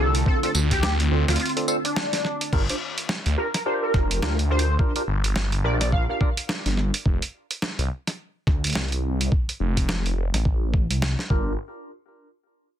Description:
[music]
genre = glitch hop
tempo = 106 BPM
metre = 4/4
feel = swing 59% on 16ths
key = G minor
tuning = A4 = 440 Hz
[part]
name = sync lead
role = melody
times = 0.0-6.2 s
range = D4 to F5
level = -28 LUFS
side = equal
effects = ensemble chorus, cassette tape, digital delay
[part]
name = warbly tape-like pad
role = sustained chords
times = 0.0-2.5 s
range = D3 to F4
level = -32 LUFS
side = right 1 dB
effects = chorus, built-in reverb, sidechain pumping
[part]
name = barky tine electric piano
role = stabs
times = 0.0-6.3, 11.3-11.5 s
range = C4 to C5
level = -29 LUFS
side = right 1 dB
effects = phaser, sidechain pumping, digital delay
[part]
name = phased detuned saw bass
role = bass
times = 0.0-11.6 s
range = F1 to D2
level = -23 LUFS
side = equal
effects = phaser, tube saturation
[part]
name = boom bap sampler-style drum kit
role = drums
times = 0.1-11.3 s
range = crash cymbal, hi-hat, snare drum, tambourine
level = -27 LUFS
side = right 1 dB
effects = none
[part]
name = electronic kick drum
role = drums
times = 0.3-11.4 s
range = none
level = -22 LUFS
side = equal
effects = none
[sound]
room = little or no reverb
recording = dense, heavily limited modern master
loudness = -21 LUFS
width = side -10 dB against mid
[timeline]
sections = 0.0-2.5 A section; 2.5-11.6 B section; 11.6-12.8 C section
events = drop 0.0-2.5; break 1.4-2.5; filter sweep on detuned saw bass 2.5-11.6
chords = 0.3 Dm7; 2.5 Gm7; 7.1 F; 11.3 Gm7; 11.6 N.C.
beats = | 0.26 0.83 1.39 1.96 | 2.53 3.09 3.66 4.22 | 4.79 5.36 5.92 6.49 | 7.05 7.62 8.19 8.75 | 9.32 9.88 10.45 11.02

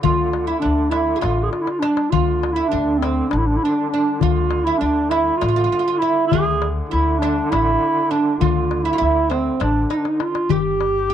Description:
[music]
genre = Turkish makam ensemble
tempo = 201 BPM (eighths)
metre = 7/8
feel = straight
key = D makam nikriz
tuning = A4 = 440 Hz
[part]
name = breathy clarinet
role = melody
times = 0.0-11.1 s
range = C4 to G#4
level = -19 LUFS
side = right 1 dB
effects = none
[part]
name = oud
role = second line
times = 0.0-11.1 s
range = C4 to G#4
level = -24 LUFS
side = right 9 dB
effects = none
[part]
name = upright bass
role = bass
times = 0.0-11.1 s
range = G1 to D2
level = -23 LUFS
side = left 1 dB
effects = none
[part]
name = warm duduk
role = drone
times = 0.0-10.6 s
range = D3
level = -31 LUFS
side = left 1 dB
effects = stereo widening
[part]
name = darbuka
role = percussion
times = 0.0-11.1 s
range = none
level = -23 LUFS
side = left 12 dB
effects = none
[sound]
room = light reverb, small room ambience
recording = 1960s-style stereo with parts hard left and right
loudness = -16 LUFS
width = side -10 dB against mid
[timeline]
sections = 0.0-10.5 A section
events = drum fill 1.5-2.1, 9.9-10.5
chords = none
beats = | 0.04 0.34 0.64 0.94 1.24 1.53 1.83 | 2.13 2.43 2.73 3.03 3.33 3.63 3.93 | 4.22 4.52 4.82 5.12 5.42 5.72 6.02 | 6.32 6.62 6.92 7.21 7.51 7.81 8.11 | 8.41 8.71 9.01 9.30 9.60 9.90 10.20 | 10.50 10.80 11.09

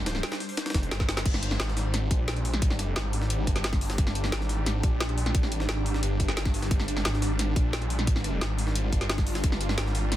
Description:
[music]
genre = dark technical drum and bass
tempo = 176 BPM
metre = 4/4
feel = straight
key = G phrygian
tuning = A4 = 440 Hz
[part]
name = swarming drone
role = sustained chords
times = 0.0-10.2 s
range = G3 to C5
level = -34 LUFS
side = equal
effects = built-in reverb, phaser, sidechain pumping
[part]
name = snarling distorted saw bass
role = bass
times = 0.0-10.2 s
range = F1 to Bb1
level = -28 LUFS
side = equal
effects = overdrive, sidechain pumping
[part]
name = drum and bass drum kit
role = drums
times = 0.1-10.2 s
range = crash cymbal, hi-hat, snare drum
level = -32 LUFS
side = equal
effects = none
[part]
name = jungle sampler-style drum kit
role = drums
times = 0.1-10.2 s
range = hi-hat, snare drum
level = -37 LUFS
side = equal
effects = high-pass filter on hats, high-pass filter on snare
[part]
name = electronic kick drum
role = drums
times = 0.7-9.5 s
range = none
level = -26 LUFS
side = equal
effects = none
[sound]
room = little or no reverb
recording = dense, heavily limited modern master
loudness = -25 LUFS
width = side -13 dB against mid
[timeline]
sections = 0.0-1.3 A section; 1.3-10.2 A section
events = drop 0.0-1.3, 1.3-10.2; drum fill 1.0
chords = 0.0 G5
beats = 0.23 0.57 0.91 | 1.25 1.60 1.94 2.28 | 2.62 2.96 3.30 3.64 | 3.98 4.32 4.66 5.00 | 5.35 5.69 6.03 6.37 | 6.71 7.05 7.39 7.73 | 8.07 8.41 8.76 9.10 | 9.44 9.78 10.12

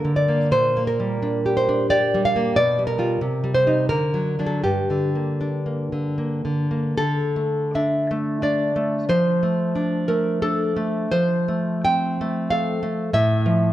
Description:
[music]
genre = romantic piece for solo classical guitar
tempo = 73-95 BPM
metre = 3/4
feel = rubato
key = G minor, D minor from 7.0 s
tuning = A4 = 438 Hz
[part]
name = nylon-string guitar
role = solo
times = 0.0-13.7 s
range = G2 to G5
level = -19 LUFS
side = equal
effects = none
[sound]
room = moderate scoring stage reverb, RT60 1.7 s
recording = none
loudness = -19 LUFS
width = side -13 dB against mid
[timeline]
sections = 0.0-7.0 A section; 7.0-13.7 B section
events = none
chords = 0.0 Gm; 0.5 Gm/Bb; 2.6 G7/B; 3.2 Cm; 3.9 D; 4.6 Gm; 7.0 D5; 9.1 Dm/F; 11.1 F; 13.1 F/A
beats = | 0.52 1.22 1.90 | 2.56 3.22 3.90 | 4.63 5.40 6.19 | 6.98 7.76 8.43 | 9.10 9.76 10.41 | 11.10 11.84 12.49 | 13.13

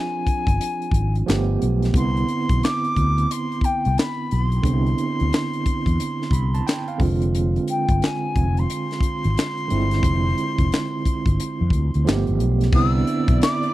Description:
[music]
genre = R&B, neo-soul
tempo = 89 BPM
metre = 4/4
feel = swing 63% on 16ths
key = C major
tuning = A4 = 440 Hz
[part]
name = silver concert flute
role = melody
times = 0.0-13.7 s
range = G5 to E6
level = -27 LUFS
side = left 2 dB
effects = none
[part]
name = overdriven tine electric piano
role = accompaniment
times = 0.0-13.7 s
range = D3 to B5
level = -25 LUFS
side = right 4 dB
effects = fast tremolo
[part]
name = fretless electric bass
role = bass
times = 0.3-13.4 s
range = F1 to F2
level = -20 LUFS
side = equal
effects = none
[part]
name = tight funk drum kit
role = drums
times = 0.3-13.7 s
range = crash cymbal, handclaps, hi-hat, kick drum, snare drum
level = -22 LUFS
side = left 1 dB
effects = none
[part]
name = dark studio string section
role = sustained chords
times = 12.7-13.7 s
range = D4 to D5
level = -30 LUFS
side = left 2 dB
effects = none
[sound]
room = little or no reverb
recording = dry, close 1970s-style studio recording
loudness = -18 LUFS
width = side -16 dB against mid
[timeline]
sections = 0.0-12.7 A section; 12.7-13.7 B section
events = tine electric piano fill 6.0-7.3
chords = 0.0 Fm6; 1.3 G9; 1.9 Cmaj9; 7.0 Fm6; 12.1 G9; 12.7 Cmaj9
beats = 0.59 1.27 | 1.94 2.62 3.29 3.96 | 4.64 5.31 5.99 6.66 | 7.33 8.01 8.68 9.36 | 10.03 10.71 11.38 12.05 | 12.73 13.40

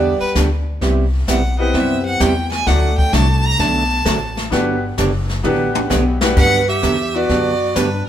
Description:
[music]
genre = country, western swing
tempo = 130 BPM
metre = 4/4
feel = swing 68% on 8ths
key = G major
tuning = A4 = 441 Hz
[part]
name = clear fiddle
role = melody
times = 0.0-8.1 s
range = B4 to Bb5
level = -20 LUFS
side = right 1 dB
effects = none
[part]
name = archtop guitar, miked and amplified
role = accompaniment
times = 0.0-7.9 s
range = C3 to G4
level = -21 LUFS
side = right 3 dB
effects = none
[part]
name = bright upright piano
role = accompaniment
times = 0.0-7.7 s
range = G3 to D5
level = -22 LUFS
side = left 3 dB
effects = none
[part]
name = upright bass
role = bass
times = 0.0-8.1 s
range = F#1 to G2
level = -19 LUFS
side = left 1 dB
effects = none
[part]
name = jazz brush drum kit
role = drums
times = 0.4-8.1 s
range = brushed snare drum, crash cymbal, hi-hat, kick drum, snare drum, toms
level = -22 LUFS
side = left 1 dB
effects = none
[part]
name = clear clarinet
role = second line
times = 6.4-8.1 s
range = D4 to B4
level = -20 LUFS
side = right 3 dB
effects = none
[sound]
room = moderate stone room reverb, RT60 1.3 s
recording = band playing live in one room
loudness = -14 LUFS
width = side -10 dB against mid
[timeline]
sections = 0.0-6.4 A section; 6.4-8.1 B section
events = fiddle solo 0.0-6.4; drum fill 5.4-6.4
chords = 0.0 G; 0.8 Cmaj7; 2.7 D; 4.5 Gmaj7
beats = 0.35 | 0.82 1.28 1.74 2.20 | 2.67 3.13 3.59 4.05 | 4.52 4.98 5.44 5.91 | 6.37 6.83 7.29 7.76

